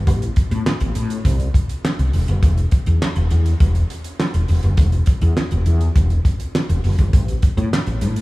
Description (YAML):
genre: early-eighties boogie funk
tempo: 102 BPM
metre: 4/4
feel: straight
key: A dorian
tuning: A4 = 440 Hz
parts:
  - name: woody fretless electric bass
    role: bass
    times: 0.0-8.2 s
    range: E1 to A2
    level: -17 LUFS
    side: equal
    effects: ensemble chorus
  - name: damped 70s drum kit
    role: drums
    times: 0.1-8.2 s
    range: handclaps, hi-hat, kick drum, snare drum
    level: -19 LUFS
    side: equal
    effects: none
room: little or no reverb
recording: small room reverb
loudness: -16 LUFS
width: side -20 dB against mid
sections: 0.0-8.2 A section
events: none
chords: none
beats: | 0.07 0.66 1.25 1.84 | 2.42 3.01 3.60 4.19 | 4.78 5.37 5.95 6.54 | 7.13 7.72